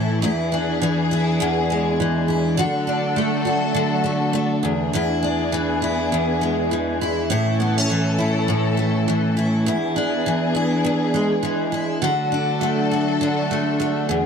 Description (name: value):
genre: acoustic pop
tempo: 102 BPM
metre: 4/4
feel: swing 60% on 16ths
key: unclear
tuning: A4 = 441 Hz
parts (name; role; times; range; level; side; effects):
- picked steel-string acoustic guitar; accompaniment; 0.0-14.3 s; E2 to F#4; -20 LUFS; equal; double-tracked left and right
- warm studio string section; sustained chords; 0.0-14.3 s; E3 to A4; -24 LUFS; equal; none
room: moderate booth ambience, RT60 0.2 s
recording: dry, close 1970s-style studio recording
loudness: -18 LUFS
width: side -6 dB against mid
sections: 0.0-14.3 A section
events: none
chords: 0.2 E7; 2.6 D; 4.6 E7; 7.3 A; 9.7 E7; 12.0 D